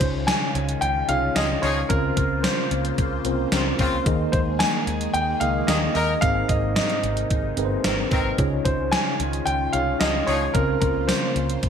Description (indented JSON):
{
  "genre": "1980s-style pop",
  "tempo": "111 BPM",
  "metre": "4/4",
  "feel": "straight",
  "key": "unclear",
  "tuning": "A4 = 439 Hz",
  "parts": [
    { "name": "warm baby grand piano", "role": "melody", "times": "0.0-11.7 s", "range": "Bb4 to Ab5", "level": "-25 LUFS", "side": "equal", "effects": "none" },
    { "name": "mellow tine electric piano", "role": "accompaniment", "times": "0.0-11.7 s", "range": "Ab2 to Eb5", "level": "-27 LUFS", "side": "right 1 dB", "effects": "medium stereo tremolo" },
    { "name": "phased analog pad", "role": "sustained chords", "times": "0.1-11.7 s", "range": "C3 to C5", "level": "-32 LUFS", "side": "left 1 dB", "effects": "phaser, chorus" },
    { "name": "vintage muted fingered electric bass", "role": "bass", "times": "0.0-11.7 s", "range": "G1 to Eb2", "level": "-28 LUFS", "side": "equal", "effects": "none" },
    { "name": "gated 80s digital drum machine", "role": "drums", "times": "0.0-11.7 s", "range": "hi-hat, kick drum, snare drum, tambourine", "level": "-25 LUFS", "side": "equal", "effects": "gated reverb, gated reverb snare, overdrive" },
    { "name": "clear horn section", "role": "stabs", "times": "1.4-10.4 s", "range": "Db3 to Bb4", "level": "-30 LUFS", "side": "left 3 dB", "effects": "none" }
  ],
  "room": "moderate plate reverb, RT60 2.1 s",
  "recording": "bright 1980s-style digital production",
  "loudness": "-20 LUFS",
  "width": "side -7 dB against mid",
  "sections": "0.0-11.7 A section",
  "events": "none",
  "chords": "0.0 Dbadd9; 1.9 Bbmadd9/Db; 4.1 Ebsus4; 6.2 Abadd9; 8.4 Dbadd9; 10.5 Bbmadd9/Db"
}